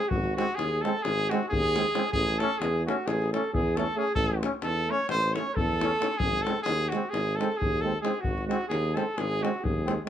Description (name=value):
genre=balkan folk, Balkan brass band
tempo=266 BPM (eighths)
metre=9/8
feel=straight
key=G# phrygian dominant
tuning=A4 = 440 Hz
part: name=warm trumpet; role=melody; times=0.0-10.0 s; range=F#4 to C#5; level=-30 LUFS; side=equal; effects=none
part: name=warm flugelhorn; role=second line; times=0.0-10.0 s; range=F#4 to C#5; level=-33 LUFS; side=right 2 dB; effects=none
part: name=davul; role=percussion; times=0.0-10.0 s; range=none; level=-33 LUFS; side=left 3 dB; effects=none
part: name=warm tuba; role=bass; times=0.1-10.0 s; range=G#1 to E2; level=-31 LUFS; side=equal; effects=none
part: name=brilliant trombone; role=accompaniment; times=0.4-10.1 s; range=B#3 to C#4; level=-34 LUFS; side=left 4 dB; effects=none
part: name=clear euphonium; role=accompaniment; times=0.4-10.1 s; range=G#3 to A3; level=-33 LUFS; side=right 6 dB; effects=none
room=moderate studio reverb, RT60 0.6 s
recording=none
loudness=-25 LUFS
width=side -10 dB against mid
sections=0.0-10.1 A section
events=none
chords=0.0 G#; 2.1 A; 6.2 G#